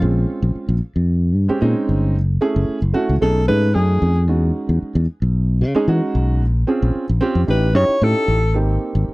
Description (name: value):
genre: electric jazz fusion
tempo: 112 BPM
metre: 4/4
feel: straight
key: unclear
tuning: A4 = 439 Hz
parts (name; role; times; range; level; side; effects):
- warm tenor saxophone; melody; 0.0-4.3, 7.5-8.6 s; G#4 to C#5; -20 LUFS; left 1 dB; none
- dark concert grand piano; accompaniment; 0.0-9.1 s; Ab3 to Ab4; -21 LUFS; right 2 dB; none
- fingered electric bass; bass; 0.0-9.1 s; Gb1 to E3; -16 LUFS; equal; none
room: little or no reverb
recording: dry, close 1970s-style studio recording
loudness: -15 LUFS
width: side -21 dB against mid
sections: 0.0-9.1 A section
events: tenor saxophone solo 0.0-9.1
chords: 0.0 Bbm9; 2.2 Gbm7; 3.2 B13; 4.3 Emaj13; 6.4 Bbm9; 7.5 A7#11; 8.6 Abmaj9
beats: | 0.02 0.56 1.09 1.62 | 2.15 2.69 3.22 3.75 | 4.29 4.82 5.35 5.89 | 6.42 6.95 7.49 8.02 | 8.55 9.09